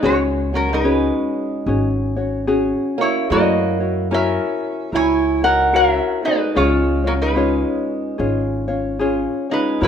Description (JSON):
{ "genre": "Hawaiian", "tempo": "74 BPM", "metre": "4/4", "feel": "swing 61% on 8ths", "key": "unclear", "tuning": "A4 = 439 Hz", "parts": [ { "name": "lap resonator guitar", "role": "melody", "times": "0.0-9.9 s", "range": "C#4 to G#5", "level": "-20 LUFS", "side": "left 1 dB", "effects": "none" }, { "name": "picked old ladder-braced acoustic guitar", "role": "second line", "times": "0.0-9.9 s", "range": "F#3 to E4", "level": "-24 LUFS", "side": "right 6 dB", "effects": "none" }, { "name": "ukulele", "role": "accompaniment", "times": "0.0-9.9 s", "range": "C#4 to C#5", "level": "-20 LUFS", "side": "left 3 dB", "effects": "none" }, { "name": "upright bass", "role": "bass", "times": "0.0-9.9 s", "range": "G#1 to F#2", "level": "-23 LUFS", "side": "right 1 dB", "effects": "none" } ], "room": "moderate recital hall reverb, RT60 1.7 s", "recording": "minimal, uncompressed stereo recording", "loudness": "-16 LUFS", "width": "side -8 dB against mid", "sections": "0.0-9.9 A section", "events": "none", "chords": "0.0 C#sus4; 3.3 F#7; 6.6 C#" }